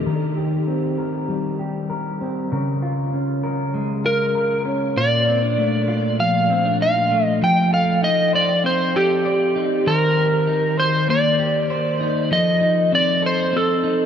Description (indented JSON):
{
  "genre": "dream pop",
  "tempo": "98 BPM",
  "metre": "4/4",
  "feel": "straight",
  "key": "unclear",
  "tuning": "A4 = 440 Hz",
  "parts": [
    { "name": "electric guitar at the edge of break-up", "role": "arpeggios", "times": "0.0-14.1 s", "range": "Bb2 to D5", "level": "-20 LUFS", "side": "left 1 dB", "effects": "wide subtle chorus, low-pass filter, digital delay" },
    { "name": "electric slide guitar", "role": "melody", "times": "4.1-14.1 s", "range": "G4 to G5", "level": "-19 LUFS", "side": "right 1 dB", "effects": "digital delay" }
  ],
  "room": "moderate huge ambient reverb, RT60 7.7 s",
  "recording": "dark, warm production",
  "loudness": "-17 LUFS",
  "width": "side -8 dB against mid",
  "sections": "0.0-14.1 A section",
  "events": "filter sweep on clean electric guitar 0.0-14.1",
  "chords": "0.1 Eb6; 2.5 Db6; 5.0 Bbmaj7; 7.4 F13; 9.9 Eb6; 12.3 F7"
}